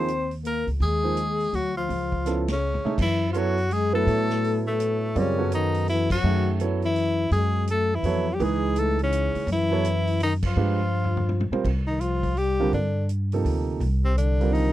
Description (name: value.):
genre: modal jazz.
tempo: 166 BPM.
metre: 3/4.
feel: swing 63% on 8ths.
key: F# dorian, C dorian from 11.7 s.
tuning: A4 = 440 Hz.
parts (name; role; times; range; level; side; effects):
bright tenor saxophone; melody; 0.0-14.7 s; A3 to C5; -27 LUFS; equal; none.
breathy trombone; second line; 0.0-14.7 s; A2 to C4; -29 LUFS; left 7 dB; none.
warm concert grand piano; accompaniment; 0.0-14.7 s; C3 to E5; -27 LUFS; right 6 dB; none.
upright bass; bass; 0.0-14.7 s; C2 to A2; -25 LUFS; equal; none.
vintage drum kit; drums; 0.1-14.7 s; crash cymbal, hi-hat, kick drum, ride cymbal, snare drum, toms; -34 LUFS; equal; none.
room: little or no reverb.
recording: dry, close 1970s-style studio recording.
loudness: -22 LUFS.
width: side -14 dB against mid.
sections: 0.0-3.0 A section; 3.0-11.7 B section; 11.7-14.7 C section.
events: band accent 2.4, 6.1, 10.4; drum fill 2.6-3.0, 10.9-11.7.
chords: 0.0 Ab/Eb; 1.9 Db7alt; 3.0 F#m9; 10.6 G7b9; 11.7 Cm9.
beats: 0.08 0.44 | 0.81 1.17 1.53 | 1.89 2.25 2.62 | 2.98 3.34 3.70 | 4.06 4.42 4.79 | 5.15 5.51 5.87 | 6.23 6.59 6.96 | 7.32 7.68 8.04 | 8.40 8.76 9.12 | 9.49 9.85 10.21 | 10.57 10.93 11.29 | 11.65 12.02 12.38 | 12.74 13.10 13.46 | 13.82 14.18 14.54.